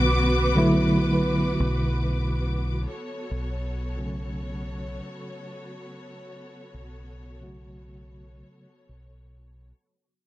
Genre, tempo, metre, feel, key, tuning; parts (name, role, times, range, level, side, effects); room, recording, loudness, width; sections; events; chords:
trip hop; 70 BPM; 4/4; swing 57% on 16ths; A4 = 440 Hz
bright tine electric piano; accompaniment; 0.0-8.7 s; C#3 to F#4; -26 LUFS; equal; tremolo, low-pass filter
warm symphonic string section; sustained chords; 0.0-9.7 s; B3 to D6; -29 LUFS; equal; vintage 12-bit sampler grit
deep dub fingered electric bass; bass; 0.0-9.7 s; B1; -28 LUFS; equal
light reverb, small room ambience; -23 LUFS; side -15 dB against mid
0.0-9.7 A section
fade-out 0.0-9.7; filter sweep on fingered electric bass 0.0-9.7; filter sweep on tine electric piano 0.0-9.7
0.0 Bm7; 2.9 F#m/B